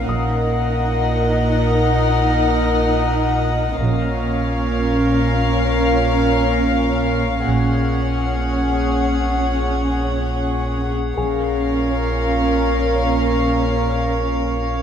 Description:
cinematic; free time; Bb minor; A4 = 440 Hz
warm symphonic violin section; melody; 0.0-14.8 s; F5 to Gb5; -25 LUFS; left 5 dB
warm symphonic violin section; second line; 0.0-14.8 s; Ab4 to Bb4; -25 LUFS; equal
dark symphonic viola section; accompaniment; 0.0-14.8 s; Db4 to Eb4; -23 LUFS; right 1 dB
drifting glass-harmonics texture; sustained chords; 0.0-14.8 s; Ab4 to Gb5; -26 LUFS; equal; chorus, built-in reverb
clear studio cello section; bass; 0.0-14.8 s; Bb2; -24 LUFS; right 2 dB
pure sine sub bass; drone; 0.0-14.8 s; Bb1; -24 LUFS; equal
dark concert grand piano; texture; 0.0-3.8, 11.2-14.8 s; Ab4 to Eb6; -30 LUFS; left 8 dB
dark symphonic double bass section; bass; 0.1-12.1 s; Bb1; -26 LUFS; right 4 dB
warm symphonic violin section; texture; 3.8-10.7 s; Db6 to F6; -33 LUFS; left 4 dB
moderate scoring stage reverb, RT60 1.4 s; dark, warm production; -16 LUFS; side -8 dB against mid
0.0-14.8 A section
0.1 Ebm/Bb; 3.8 Bbm; 7.5 Gbadd9/Bb; 11.2 Bbm
free time

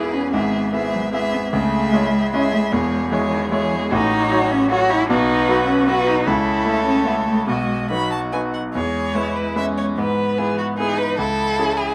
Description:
quick classical-period movement for piano quartet; 150 BPM; 3/4; rubato; E major; A4 = 441 Hz
rich violin; melody; 0.0-11.9 s; F#4 to B5; -27 LUFS; equal
rich violin; second line; 0.0-11.9 s; B3 to A4; -28 LUFS; equal
warm cello; second line; 0.0-11.9 s; D#3 to F#4; -25 LUFS; equal
bright concert grand piano; accompaniment; 0.0-11.9 s; E1 to E5; -23 LUFS; equal
light reverb; -19 LUFS; mono
0.0-8.7 A section; 8.7-11.9 A section
0.3 E/G#; 1.5 C#m; 2.7 C#m/E; 3.9 F#m/A; 5.1 B; 6.3 A/C#; 7.5 B; 8.7 E; 10.0 E/G#; 11.2 C#m
| 0.33 0.73 1.13 | 1.53 1.93 2.33 | 2.72 3.12 3.51 | 3.92 4.31 4.70 | 5.09 5.49 5.88 | 6.27 6.66 7.07 | 7.48 7.90 8.32 | 8.74 9.15 9.56 | 9.97 10.38 10.78 | 11.19 11.58

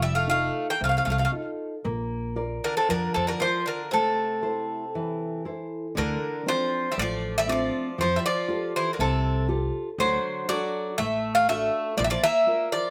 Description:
greek folk, Greek bouzouki band; 118 BPM; 4/4; straight; A4 = 440 Hz
Greek bouzouki; melody; 0.0-12.9 s; A4 to G5; -27 LUFS; equal
Greek bouzouki; second line; 0.0-12.9 s; C3 to Bb3; -35 LUFS; equal; slapback echo
nylon-string guitar; accompaniment; 0.0-12.9 s; C3 to D5; -34 LUFS; equal
upright bass; bass; 0.0-12.2 s; F1 to F2; -32 LUFS; equal
little or no reverb; recorded outdoors, with no room sound; -26 LUFS; mono
0.0-6.0 A section; 6.0-12.9 B section
speeding up 0.0-12.9
0.0 F7; 1.8 Bb; 3.9 Am; 6.0 Dm7; 8.0 Fadd9; 10.0 D; 12.0 Bb
0.27 0.80 1.32 | 1.84 2.36 2.88 3.40 | 3.92 4.43 4.94 5.45 | 5.96 6.47 6.98 7.49 | 7.99 8.49 8.99 9.49 | 9.99 10.49 10.98 11.48 | 11.97 12.46

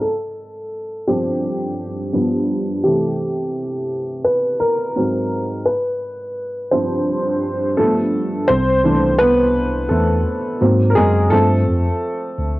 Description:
hip hop; 85 BPM; 4/4; swing 65% on 16ths; C major; A4 = 438 Hz
warm upright piano; accompaniment; 0.0-12.6 s; G2 to C5; -17 LUFS; equal; cassette tape, low-pass filter
tine electric piano; bass; 8.5-12.6 s; C2 to Ab2; -18 LUFS; equal; medium stereo tremolo
light reverb, small room ambience; home recording on cassette, low-pass filter; -16 LUFS; side -18 dB against mid
0.0-8.5 A section; 8.5-12.6 B section
upright piano solo 0.0-8.5, 8.5-12.6; filter sweep 0.0-8.5
0.0 G9sus4; 2.1 G7; 2.8 C6; 5.0 Ab9; 5.7 G7sus4; 7.8 G9; 8.5 C6; 10.6 Ab9; 11.3 G9sus4
| 0.01 0.72 1.43 2.13 | 2.84 3.54 4.25 4.96 | 5.66 6.37 7.07 7.78 | 8.49 9.19 9.90 10.60 | 11.31 12.02

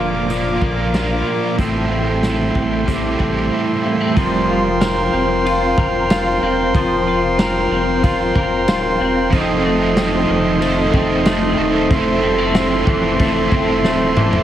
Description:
dream pop; 93 BPM; 4/4; straight; A4 = 440 Hz
overdriven electric guitar; accompaniment; 0.0-4.7, 9.3-14.4 s; A2 to Bb4; -20 LUFS; right 3 dB; harmonic tremolo, analog chorus
pipe organ, principal; sustained chords; 0.0-14.4 s; A4 to D6; -20 LUFS; right 1 dB
electric guitar at the edge of break-up; arpeggios; 0.0-14.4 s; F2 to Bb4; -20 LUFS; left 2 dB; ensemble chorus, digital delay
warm sub bass; bass; 0.0-14.4 s; D1 to Bb1; -26 LUFS; equal
raw garage drum kit; drums; 0.3-14.4 s; hi-hat, kick drum, ride cymbal, snare drum, tambourine, toms; -21 LUFS; equal
moderate huge ambient reverb, RT60 3.8 s; heavily compressed radio sound, multiband compression; -14 LUFS; side -11 dB against mid
0.0-4.2 A section; 4.2-14.4 B section
drum fill 13.8-14.4
0.0 Bb; 1.6 Am7; 4.2 C7sus4; 9.3 F7; 11.9 Fmaj7
0.29 0.94 | 1.58 2.23 2.87 3.52 | 4.16 4.81 5.45 6.10 | 6.74 7.39 8.03 8.68 | 9.32 9.97 10.62 11.26 | 11.90 12.55 13.20 13.84

